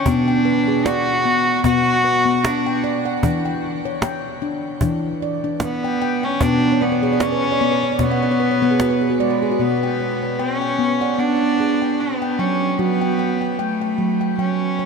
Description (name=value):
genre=world meditative, meditative tuned percussion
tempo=76 BPM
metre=4/4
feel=swing 55% on 16ths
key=B minor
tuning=A4 = 439 Hz
part: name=rich cello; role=melody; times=0.0-14.9 s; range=G#3 to F#4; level=-20 LUFS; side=right 1 dB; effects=shimmer reverb, tape echo
part: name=handpan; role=arpeggios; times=0.0-14.9 s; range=B2 to G5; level=-20 LUFS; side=equal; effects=shimmer reverb
part: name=cajon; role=percussion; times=0.1-9.3 s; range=none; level=-26 LUFS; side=right 1 dB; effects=none
room=wet cathedral reverb, RT60 5.1 s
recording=none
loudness=-17 LUFS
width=side -5 dB against mid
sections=0.0-9.6 A section; 9.6-14.9 B section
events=handpan fill 6.7-9.6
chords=0.1 Bm; 3.2 Em13; 6.4 Bm; 12.8 F#m